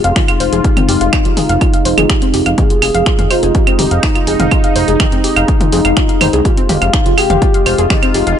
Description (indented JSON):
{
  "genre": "melodic techno",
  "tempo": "124 BPM",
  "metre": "4/4",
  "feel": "straight",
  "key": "F minor",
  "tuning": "A4 = 440 Hz",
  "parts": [
    { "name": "expressive synth lead", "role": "melody", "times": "0.0-8.4 s", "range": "Eb4 to Ab4", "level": "-17 LUFS", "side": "equal", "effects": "analog chorus, cassette tape, sidechain pumping, dub echo" },
    { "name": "sweeping resonant pad", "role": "sustained chords", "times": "0.0-8.4 s", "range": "C3 to F4", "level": "-21 LUFS", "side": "equal", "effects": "chorus, sidechain pumping" },
    { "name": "soft round pluck", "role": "arpeggios", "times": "0.0-8.3 s", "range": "C4 to F5", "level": "-18 LUFS", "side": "left 1 dB", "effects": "lush chorus, sidechain pumping, dub echo" },
    { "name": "fat analog bass", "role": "bass", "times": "0.0-8.3 s", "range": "F1 to F2", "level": "-17 LUFS", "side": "equal", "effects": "tube saturation, sidechain pumping" },
    { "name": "punchy analog drum machine", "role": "drums", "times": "0.0-8.4 s", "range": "claves, finger snaps, hi-hat, toms", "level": "-17 LUFS", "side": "right 1 dB", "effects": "none" },
    { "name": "electronic kick drum", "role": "drums", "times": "0.2-8.0 s", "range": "none", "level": "-14 LUFS", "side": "equal", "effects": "none" }
  ],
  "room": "little or no reverb",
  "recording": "nothing above 11.0 kHz",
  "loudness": "-10 LUFS",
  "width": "side -9 dB against mid",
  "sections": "0.0-8.4 A section",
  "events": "none",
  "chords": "0.0 Fm"
}